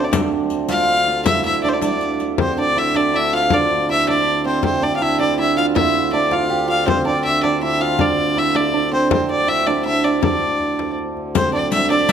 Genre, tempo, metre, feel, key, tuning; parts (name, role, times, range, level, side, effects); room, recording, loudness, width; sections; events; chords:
medieval dance; 107 BPM (dotted quarters); 6/8; straight; D minor; A4 = 441 Hz
warm fiddle; melody; 0.0-12.1 s; C5 to F5; -18 LUFS; left 1 dB
hammered dulcimer; second line; 0.0-12.1 s; C4 to G4; -20 LUFS; right 5 dB
pedal harmonium; drone; 0.0-12.1 s; D2; -27 LUFS; equal
frame drum; percussion; 0.1-12.1 s; -23 LUFS; left 7 dB
riq; percussion; 0.1-2.3, 11.3-12.1 s; -26 LUFS; left 5 dB
moderate recital hall reverb, RT60 1.4 s; close, detailed microphones; -15 LUFS; side -8 dB against mid
0.0-2.4 A section; 2.4-11.3 B section